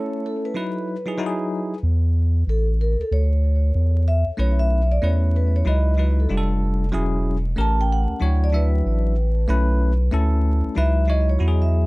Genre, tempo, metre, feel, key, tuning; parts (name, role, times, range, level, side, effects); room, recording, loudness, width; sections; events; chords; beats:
hip hop, jazz-hop; 94 BPM; 4/4; swing 62% on 16ths; A4 = 440 Hz
vibraphone with soft mallets; melody; 0.0-11.9 s; A4 to A5; -28 LUFS; right 1 dB; tape echo
bell-like tine electric piano; accompaniment; 0.0-11.9 s; F#3 to E5; -25 LUFS; left 1 dB; medium stereo tremolo
round analog bass; bass; 1.8-11.9 s; E1 to E2; -18 LUFS; equal
little or no reverb; vinyl crackle; -18 LUFS; side -22 dB against mid
0.0-1.8 A section; 1.8-11.9 B section
break 0.0-1.8; vibraphone solo 1.8-11.9
0.0 B9sus4 (rootless); 0.6 F#13sus4; 1.2 Emaj9; 1.8 N.C.; 2.5 A#maj7(no3)/A; 3.1 Dsus2; 4.4 B9sus4; 5.7 C#m11; 6.3 F69; 6.9 E69; 7.6 A7b9; 8.2 Dmaj9; 9.5 B9sus4; 10.8 C#m11
0.56 1.20 | 1.83 2.47 3.11 3.75 | 4.39 5.03 5.66 6.30 | 6.94 7.58 8.22 8.85 | 9.49 10.13 10.77 11.41